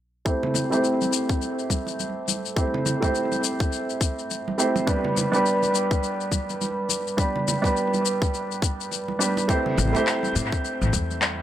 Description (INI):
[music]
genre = organic downtempo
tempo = 104 BPM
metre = 4/4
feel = swing 59% on 16ths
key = A minor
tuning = A4 = 437 Hz
[part]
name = felt-muted upright piano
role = accompaniment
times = 0.3-11.4 s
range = G3 to C5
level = -24 LUFS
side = right 1 dB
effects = sidechain pumping, low-pass filter, dub echo
[part]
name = electronic kick drum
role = drums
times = 0.3-11.1 s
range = none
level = -24 LUFS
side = left 1 dB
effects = none
[part]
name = electronic shaker and handclaps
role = drums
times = 0.3-11.4 s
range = none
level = -28 LUFS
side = left 7 dB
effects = dub echo
[part]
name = congas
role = percussion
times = 0.4-11.4 s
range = none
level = -33 LUFS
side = right 3 dB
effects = dub echo
[part]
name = upright bass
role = bass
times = 9.8-11.4 s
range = A1 to A2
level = -25 LUFS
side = left 1 dB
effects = tube saturation, sidechain pumping
[sound]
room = wet spring reverb, RT60 2.9 s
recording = echo-heavy mix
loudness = -22 LUFS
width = side -11 dB against mid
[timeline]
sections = 0.3-11.4 A section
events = filter sweep on felt piano 0.3-11.4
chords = 0.3 Am7; 4.9 G; 9.5 Am7